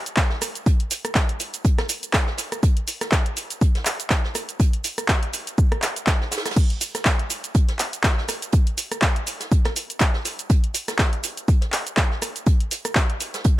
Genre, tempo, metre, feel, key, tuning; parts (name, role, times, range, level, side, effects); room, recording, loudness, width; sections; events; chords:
house; 122 BPM; 4/4; swing 56% on 16ths
punchy analog drum machine; drums; 0.1-13.6 s; crash cymbal, handclaps, hi-hat, rim click, shaker; -24 LUFS; right 1 dB
electronic kick drum; drums; 0.2-13.6 s; -19 LUFS; equal; overdrive
jazz brush drum kit; drums; 0.2-13.6 s; hi-hat, snare drum; -32 LUFS; right 3 dB; sidechain pumping on hats, high-pass filter on hats, high-pass filter on snare, high-pass filter on room
little or no reverb; -20 LUFS; side -16 dB against mid
0.0-13.6 A section